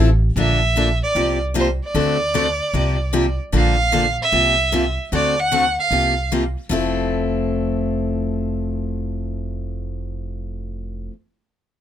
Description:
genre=acoustic string swing (jazz manouche)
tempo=151 BPM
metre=4/4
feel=swing 63% on 8ths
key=F major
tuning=A4 = 440 Hz
part: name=picked steel-string acoustic guitar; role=accompaniment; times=0.0-11.1 s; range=C3 to A4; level=-22 LUFS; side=left 3 dB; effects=none
part: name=upright bass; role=bass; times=0.0-11.1 s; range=F1 to D2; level=-22 LUFS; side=right 1 dB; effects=none
part: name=rich violin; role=melody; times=0.4-6.3 s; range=C5 to F#5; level=-19 LUFS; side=right 2 dB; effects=none
room=light reverb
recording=minimal, uncompressed stereo recording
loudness=-17 LUFS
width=side -10 dB against mid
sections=0.4-6.7 A section; 6.7-9.9 B section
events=none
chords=0.4 Bbmaj7; 1.2 C7sus4; 2.0 D7; 2.7 C9sus4; 3.5 Bbmaj7; 4.3 C7sus4; 5.1 D7; 5.9 C7sus4; 6.7 Fmaj7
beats=| 0.37 0.76 1.16 1.56 | 1.95 2.35 2.75 3.14 | 3.54 3.93 4.33 4.73 | 5.12 5.52 5.92 6.31 | 6.71 7.11 7.50 7.90 | 8.29 8.69 9.09 9.48

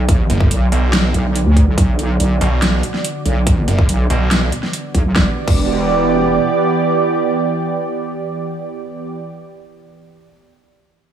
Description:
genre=heavy wobble dubstep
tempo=142 BPM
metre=4/4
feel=half-time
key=E minor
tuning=A4 = 440 Hz
part: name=lush unison pad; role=sustained chords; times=0.0-9.2 s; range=D3 to D5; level=-19 LUFS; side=right 3 dB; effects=chorus, sidechain pumping
part: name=wobble bass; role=bass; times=0.0-6.4 s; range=E1 to D2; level=-16 LUFS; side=equal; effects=chorus, overdrive
part: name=big-room dance drum kit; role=drums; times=0.1-5.6 s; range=crash cymbal, hi-hat, snare drum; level=-20 LUFS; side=equal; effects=overdrive
part: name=electronic kick drum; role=drums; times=0.1-5.6 s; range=none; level=-15 LUFS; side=equal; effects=overdrive
part: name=snarling distorted saw bass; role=bass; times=0.3-4.5 s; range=F#1 to B1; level=-15 LUFS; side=equal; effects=overdrive
room=light reverb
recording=small room ambience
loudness=-13 LUFS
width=side -9 dB against mid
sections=0.0-5.2 A section; 5.2-8.5 B section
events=drop 0.0-5.2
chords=0.0 Bm; 5.2 Em7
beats=| 0.09 0.51 0.93 1.35 | 1.78 2.20 2.62 3.04 | 3.47 3.89 4.31 4.74 | 5.16 5.58 6.00 6.42 | 6.85 7.27 7.69 8.12

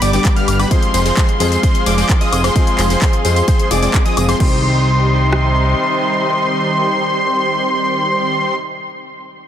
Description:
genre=EDM, festival progressive house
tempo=130 BPM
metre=4/4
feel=straight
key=C harmonic minor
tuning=A4 = 440 Hz
part: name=dark grand piano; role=accompaniment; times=0.0-9.5 s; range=G2 to Ab4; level=-24 LUFS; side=left 5 dB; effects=sidechain pumping, tape echo
part: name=muted studio string section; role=sustained chords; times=0.0-8.5 s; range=C3 to C6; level=-24 LUFS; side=equal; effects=sidechain pumping
part: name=wide unison lead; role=arpeggios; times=0.0-8.5 s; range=B5 to F6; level=-19 LUFS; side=equal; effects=sidechain pumping, tape echo
part: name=supersaw stab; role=riff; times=0.0-8.5 s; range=D3 to F5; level=-20 LUFS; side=right 1 dB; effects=sidechain pumping, tape echo
part: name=fat analog bass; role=bass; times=0.0-5.7 s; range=F1 to F2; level=-16 LUFS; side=equal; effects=sidechain pumping
part: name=house drum kit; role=drums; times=0.0-4.5 s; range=crash cymbal, handclaps, hi-hat, tambourine, woodblock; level=-23 LUFS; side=left 3 dB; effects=overdrive
part: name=house drum kit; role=drums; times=0.2-5.4 s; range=kick drum, rim click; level=-15 LUFS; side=equal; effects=overdrive
room=digital ambience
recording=dense, heavily limited modern master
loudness=-12 LUFS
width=side -10 dB against mid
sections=0.0-4.4 A section; 4.4-8.1 B section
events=drop 0.0-4.4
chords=0.0 G; 0.7 Fm; 4.4 Cm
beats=0.25 | 0.71 1.17 1.63 2.10 | 2.56 3.02 3.48 3.94 | 4.40 4.86 5.33 5.79 | 6.25 6.71 7.17 7.63

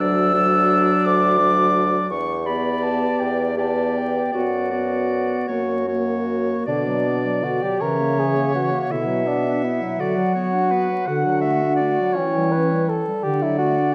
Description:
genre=classical, slow romantic movement for wind quintet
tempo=50-59 BPM (dotted quarters)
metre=6/8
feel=rubato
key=B minor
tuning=A4 = 440 Hz
part: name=mellow concert flute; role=melody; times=0.0-13.9 s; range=D5 to E6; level=-27 LUFS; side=equal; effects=none
part: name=clear oboe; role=second line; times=0.0-13.9 s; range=B4 to F#5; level=-30 LUFS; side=equal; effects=none
part: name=mellow French horn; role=accompaniment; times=0.0-13.9 s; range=B2 to B3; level=-26 LUFS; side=equal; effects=none
part: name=mellow clarinet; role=accompaniment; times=0.0-13.9 s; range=D3 to G4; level=-30 LUFS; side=equal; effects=none
part: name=warm bassoon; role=bass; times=0.0-13.9 s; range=D2 to B4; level=-25 LUFS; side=equal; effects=none
room=wet recital hall reverb, RT60 1.4 s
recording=vinyl crackle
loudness=-20 LUFS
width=mono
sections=0.0-6.7 A section; 6.7-13.9 B section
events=none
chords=0.0 D; 2.1 Em7; 4.3 Bm/F#; 5.5 F#; 6.7 Bm; 7.8 A#dim/C#; 8.9 Bm; 11.1 D; 12.1 C#dim/E; 13.2 D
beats=| 0.00 1.05 | 2.10 3.20 | 4.35 5.49 | 6.67 7.80 | 8.90 9.98 | 11.06 12.15 | 13.22

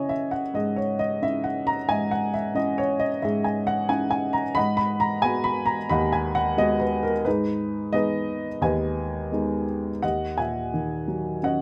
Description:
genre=classical, lyrical solo piano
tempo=89 BPM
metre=4/4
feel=rubato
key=G# minor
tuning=A4 = 441 Hz
part: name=dark upright piano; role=solo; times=0.0-11.6 s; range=D#2 to B5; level=-25 LUFS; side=equal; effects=none
room=light reverb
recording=close, detailed microphones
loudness=-25 LUFS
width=mono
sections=0.0-10.0 A section; 10.0-11.6 B section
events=none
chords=0.0 C#madd9; 4.6 G#m7; 7.3 G#m; 10.0 D#m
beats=0.55 1.22 | 1.89 2.56 3.23 3.90 | 4.57 5.24 5.91 6.58 | 7.26 7.93 8.62 9.32 | 10.03 10.73 11.43

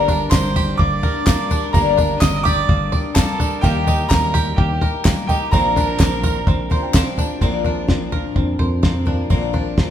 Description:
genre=indie folk with a building arrangement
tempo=127 BPM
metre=4/4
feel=straight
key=Bb major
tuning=A4 = 440 Hz
part: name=bright upright piano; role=melody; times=0.0-6.9 s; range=G5 to Eb6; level=-24 LUFS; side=right 2 dB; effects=none
part: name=warm fiddle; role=second line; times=0.0-6.9 s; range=G4 to Eb5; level=-26 LUFS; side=right 5 dB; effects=none
part: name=dark baby grand piano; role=accompaniment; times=0.0-7.4 s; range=G1 to Bb5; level=-33 LUFS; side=right 1 dB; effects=none
part: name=picked twelve-string acoustic guitar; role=accompaniment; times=0.0-9.9 s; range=G2 to Bb4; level=-24 LUFS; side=left 7 dB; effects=none
part: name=bluegrass banjo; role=arpeggios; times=0.0-9.9 s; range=Bb3 to D5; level=-28 LUFS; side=right 5 dB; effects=none
part: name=fingered electric bass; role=bass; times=0.0-9.9 s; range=G1 to F2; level=-24 LUFS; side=equal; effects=none
part: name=cloth-damped thuddy drum kit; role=drums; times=0.1-9.9 s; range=kick drum, snare drum, toms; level=-18 LUFS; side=equal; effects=none
part: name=tambourine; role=percussion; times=0.1-7.3 s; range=none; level=-36 LUFS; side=left 5 dB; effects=none
part: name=group handclap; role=percussion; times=0.3-7.1 s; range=none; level=-29 LUFS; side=left 2 dB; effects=none
part: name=fingerpicked steel-string acoustic guitar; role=accompaniment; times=7.4-9.9 s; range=Bb2 to Bb4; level=-28 LUFS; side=left 1 dB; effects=none
room=wet large studio reverb, RT60 1.3 s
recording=band playing live in one room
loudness=-15 LUFS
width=side -10 dB against mid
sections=0.0-7.4 A section; 7.4-9.9 B section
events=grand piano fill 6.5-7.4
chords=0.0 Gm; 3.6 Eb; 5.5 Bbadd9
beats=0.32 0.79 1.27 | 1.74 2.21 2.69 3.16 | 3.63 4.11 4.58 5.05 | 5.53 6.00 6.47 6.94 | 7.42 7.89 8.36 8.83 | 9.31 9.78

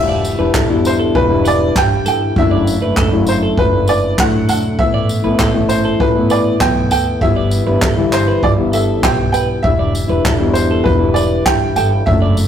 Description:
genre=acoustic pop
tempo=99 BPM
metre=4/4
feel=straight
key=unclear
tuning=A4 = 440 Hz
part: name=bright upright piano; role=melody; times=0.0-12.5 s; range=B4 to G5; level=-18 LUFS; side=right 2 dB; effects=none
part: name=fingerpicked plugged-in steel-string acoustic guitar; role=accompaniment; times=0.0-12.5 s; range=E2 to E4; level=-17 LUFS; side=left 4 dB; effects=none
part: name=upright bass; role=bass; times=0.0-12.5 s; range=E1 to D2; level=-19 LUFS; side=right 1 dB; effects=none
part: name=twelve-string electric guitar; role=arpeggios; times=0.1-12.4 s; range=A4 to D5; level=-24 LUFS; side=right 4 dB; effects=none
part: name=jazz brush drum kit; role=drums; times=0.2-12.5 s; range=handclaps, kick drum, tambourine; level=-18 LUFS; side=right 1 dB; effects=none
room=moderate stone room reverb, RT60 1.1 s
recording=rough rehearsal-room recording, tube saturation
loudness=-12 LUFS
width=side -9 dB against mid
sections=0.0-12.5 A section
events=none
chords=0.0 Em7; 2.4 Dadd9/F#; 4.8 Asus2; 7.2 G6; 9.6 Em7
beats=0.54 1.15 1.76 | 2.36 2.97 3.57 4.18 | 4.79 5.39 6.00 6.61 | 7.21 7.82 8.43 9.03 | 9.64 10.25 10.86 11.46 | 12.07

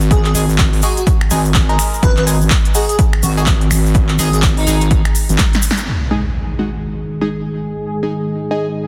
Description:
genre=bass house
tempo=125 BPM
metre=4/4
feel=swing 60% on 16ths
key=unclear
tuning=A4 = 441 Hz
part: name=wobble bass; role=bass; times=0.0-5.4 s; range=G#1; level=-17 LUFS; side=equal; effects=chorus, overdrive, sidechain pumping
part: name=tube shaker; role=percussion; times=0.0-5.8 s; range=none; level=-27 LUFS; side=equal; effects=none
part: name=airy dreamy lead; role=melody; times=0.1-4.9 s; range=D#4 to B4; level=-25 LUFS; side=equal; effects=chorus, dub echo
part: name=big-room dance drum kit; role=drums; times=0.1-5.8 s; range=finger snaps, handclaps, hi-hat, snare drum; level=-23 LUFS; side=equal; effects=overdrive, low-pass filter on snare, low-pass filter on hats, low-pass filter on room
part: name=electronic kick drum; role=drums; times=0.1-5.5 s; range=none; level=-17 LUFS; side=equal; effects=overdrive
part: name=band-passed chord stab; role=stabs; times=0.3-8.7 s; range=G#3 to A#4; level=-25 LUFS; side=equal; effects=phaser, sidechain pumping, dub echo
part: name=sweeping resonant pad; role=sustained chords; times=5.9-8.9 s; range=D#3 to G#4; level=-26 LUFS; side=equal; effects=chorus, sidechain pumping
part: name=impact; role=sound effects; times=5.9-7.8 s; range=none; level=-25 LUFS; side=equal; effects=none
part: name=deep dark ambient pad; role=texture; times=7.0-8.9 s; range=G#3 to D#6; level=-30 LUFS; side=equal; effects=chorus, built-in reverb, sidechain pumping
room=light reverb, digital ambience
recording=dense, heavily limited modern master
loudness=-15 LUFS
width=mono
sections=0.0-5.9 A section; 5.9-8.9 B section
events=drop 0.0-5.9; drum fill 5.4-5.9; band accent 5.7; impact 5.9-7.8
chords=0.0 G#5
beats=| 0.11 0.59 1.07 1.55 | 2.03 2.51 2.99 3.47 | 3.95 4.43 4.91 5.39 | 5.87 6.35 6.83 7.31 | 7.79 8.27 8.75

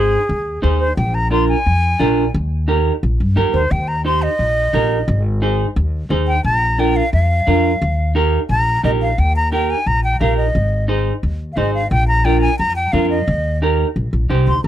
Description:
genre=latin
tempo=176 BPM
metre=4/4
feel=straight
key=Eb major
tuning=A4 = 435 Hz
part: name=breathy silver concert flute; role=melody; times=0.0-14.7 s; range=Ab4 to C6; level=-19 LUFS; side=left 1 dB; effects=tape echo
part: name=semi-hollow electric guitar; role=accompaniment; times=0.0-14.5 s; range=D4 to C5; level=-18 LUFS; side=right 2 dB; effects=none
part: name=upright bass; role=bass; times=0.0-14.7 s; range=Ab1 to G2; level=-17 LUFS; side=equal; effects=none
room=little or no reverb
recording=dry, close 1970s-style studio recording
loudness=-14 LUFS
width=side -11 dB against mid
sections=0.0-9.2 A section; 9.2-14.7 B section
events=flute solo 0.0-9.2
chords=0.0 Ab; 1.0 Bb7; 2.3 Eb; 5.1 Ab; 6.4 Bb; 7.8 Eb; 10.5 Ab; 11.9 Bb; 13.3 Eb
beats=0.29 0.63 | 0.98 1.32 1.66 2.00 | 2.34 2.69 3.03 3.37 | 3.71 4.05 4.40 4.74 | 5.08 5.42 5.76 6.11 | 6.45 6.79 7.13 7.47 | 7.81 8.15 8.50 8.84 | 9.18 9.52 9.86 10.21 | 10.55 10.89 11.23 11.57 | 11.91 12.26 12.60 12.94 | 13.28 13.62 13.97 14.31 | 14.65

